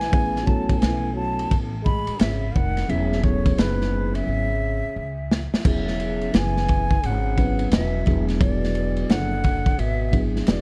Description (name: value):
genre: hip hop, jazz-hop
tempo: 87 BPM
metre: 4/4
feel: swing 64% on 16ths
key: E major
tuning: A4 = 440 Hz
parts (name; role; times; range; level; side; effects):
- breathy concert flute; melody; 0.0-10.6 s; B4 to B5; -31 LUFS; equal; analog delay, plate reverb
- breathy trombone; second line; 0.0-10.6 s; G#2 to G#3; -34 LUFS; equal; plate reverb
- upright bass; bass; 0.0-10.6 s; E1 to C#2; -28 LUFS; equal; none
- crunchy breakbeat drum kit; drums; 0.0-10.6 s; crash cymbal, hi-hat, kick drum, ride cymbal, snare drum; -24 LUFS; equal; none
- mellow tine electric piano; accompaniment; 0.1-10.6 s; F#3 to B4; -30 LUFS; equal; plate reverb
room: light reverb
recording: dark, warm production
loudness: -22 LUFS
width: mono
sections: 0.0-5.6 A section; 5.6-10.6 B section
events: drum fill 4.3-5.6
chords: 0.1 Amaj7; 2.9 E69; 8.1 E7